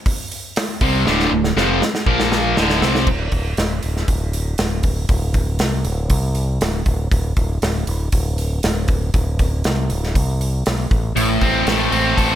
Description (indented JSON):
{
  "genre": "classic rock",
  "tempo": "119 BPM",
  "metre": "4/4",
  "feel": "straight",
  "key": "D minor",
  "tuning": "A4 = 442 Hz",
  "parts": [
    { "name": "big rock drum kit", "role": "drums", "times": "0.1-12.3 s", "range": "crash cymbal, hi-hat, kick drum, snare drum", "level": "-20 LUFS", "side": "equal", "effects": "none" },
    { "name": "distorted electric guitar", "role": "riff", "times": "0.8-3.1, 11.2-12.4 s", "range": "D2 to A4", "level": "-16 LUFS", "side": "equal", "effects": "overdrive" },
    { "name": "growling fingered electric bass", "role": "bass", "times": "0.8-12.4 s", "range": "D1 to C2", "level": "-21 LUFS", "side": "equal", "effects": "overdrive" }
  ],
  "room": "little or no reverb",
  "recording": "none",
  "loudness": "-16 LUFS",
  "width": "side -11 dB against mid",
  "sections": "0.0-3.1 A section; 3.1-12.4 B section",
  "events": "drum fill 1.1-3.1",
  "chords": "0.0 Dm; 2.1 Bb5; 2.6 D5; 3.1 N.C.; 10.9 Am"
}